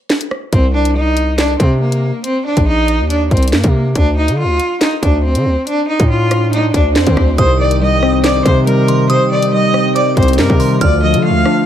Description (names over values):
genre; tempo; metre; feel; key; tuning
hip hop, drill; 140 BPM; 4/4; half-time; unclear; A4 = 441 Hz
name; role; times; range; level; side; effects
drill drum kit; drums; 0.1-11.6 s; handclaps, hi-hat, kick drum, rim click, snare drum; -15 LUFS; equal; none
bright cello; melody; 0.5-11.6 s; Bb3 to F5; -16 LUFS; left 1 dB; low-pass filter, analog delay
distorted 808-style bass; bass; 0.5-11.4 s; Bb1 to D3; -15 LUFS; equal; distortion
swell; sound effects; 6.1-7.4 s; none; -22 LUFS; right 3 dB; none
glassy synth bell; second line; 7.4-11.6 s; C6 to F6; -22 LUFS; right 3 dB; chorus, analog delay
warbly lo-fi synth keys; accompaniment; 7.4-11.7 s; C3 to C5; -16 LUFS; left 2 dB; chorus, low-pass filter
pipe organ, foundations; sustained chords; 7.4-11.7 s; C3 to F4; -19 LUFS; right 3 dB; none
room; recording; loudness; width
moderate plate reverb, RT60 1.0 s; dreamy mix soaked in reverb; -11 LUFS; side -10 dB against mid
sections
0.0-7.4 A section; 7.4-11.7 B section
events
break 0.0-0.5; swell 6.1-7.4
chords
0.0 N.C.; 0.5 Cm; 4.0 Dm; 7.4 Cm; 10.8 Dm